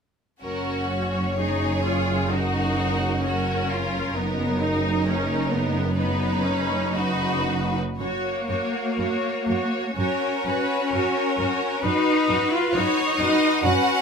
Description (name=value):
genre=classical, slow romantic movement for string orchestra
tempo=63 BPM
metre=4/4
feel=uneven beats, rubato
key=F# major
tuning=A4 = 439 Hz
part: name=rich studio violin section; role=melody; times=0.4-14.0 s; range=A#4 to C#5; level=-30 LUFS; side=left 3 dB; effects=none
part: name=bright symphonic violin section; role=second line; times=0.4-14.0 s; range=D#4 to F#5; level=-28 LUFS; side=equal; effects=none
part: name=bright symphonic viola section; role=accompaniment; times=0.4-14.0 s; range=B3 to F#4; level=-28 LUFS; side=equal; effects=none
part: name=clear studio cello section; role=bass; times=0.4-14.0 s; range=F#2 to E#4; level=-26 LUFS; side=left 1 dB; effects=none
part: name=clear symphonic double bass section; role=bass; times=0.4-13.7 s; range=F#1 to F#2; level=-28 LUFS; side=right 3 dB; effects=none
room=moderate studio reverb, RT60 0.7 s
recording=minimal, uncompressed stereo recording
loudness=-21 LUFS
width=side -6 dB against mid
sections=0.4-8.0 A section; 8.0-14.0 B section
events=none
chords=0.4 F#; 4.2 B/F#; 8.0 F#; 11.8 B/F#